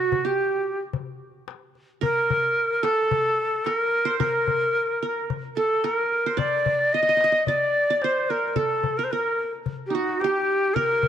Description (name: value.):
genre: Arabic maqam ensemble.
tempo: 110 BPM.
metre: 4/4.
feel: straight.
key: unclear.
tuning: A4 = 440 Hz.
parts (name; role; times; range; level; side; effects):
breathy bright ney; melody; 0.0-11.1 s; F#4 to Eb5; -22 LUFS; left 1 dB; slapback echo.
qanun; second line; 0.0-11.1 s; Eb4 to Eb5; -29 LUFS; right 10 dB; none.
darbuka; percussion; 0.1-11.1 s; none; -30 LUFS; left 7 dB; none.
room: moderate plate reverb, RT60 2.6 s.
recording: 1960s-style stereo with parts hard left and right.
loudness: -21 LUFS.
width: side -9 dB against mid.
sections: 0.0-11.1 A section.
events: none.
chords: none.